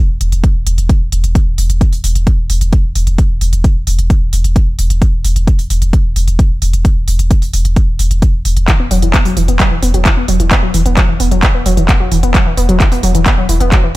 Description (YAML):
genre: driving peak-time techno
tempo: 131 BPM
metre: 4/4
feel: straight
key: unclear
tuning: A4 = 440 Hz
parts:
  - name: saturated sub bass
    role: bass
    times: 0.1-13.9 s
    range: E1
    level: -14 LUFS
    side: equal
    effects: tube saturation, sidechain pumping, low-pass filter
  - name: techno drum kit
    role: drums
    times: 0.2-13.8 s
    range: handclaps, hi-hat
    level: -18 LUFS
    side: equal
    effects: overdrive
  - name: electronic kick drum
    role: drums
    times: 0.4-13.8 s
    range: none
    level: -12 LUFS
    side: equal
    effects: overdrive
  - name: warbly dusty pluck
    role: riff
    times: 8.7-13.9 s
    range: E3 to B3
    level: -16 LUFS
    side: equal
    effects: chorus, tube saturation, sidechain pumping, dub echo
room: digital ambience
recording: none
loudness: -10 LUFS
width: side -18 dB against mid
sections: 0.0-14.0 A section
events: none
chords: none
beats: 0.44 0.89 | 1.35 1.81 2.27 2.73 | 3.18 3.64 4.10 4.56 | 5.02 5.47 5.93 6.39 | 6.85 7.31 7.76 8.22 | 8.68 9.14 9.60 10.05 | 10.51 10.97 11.43 11.89 | 12.35 12.80 13.26 13.72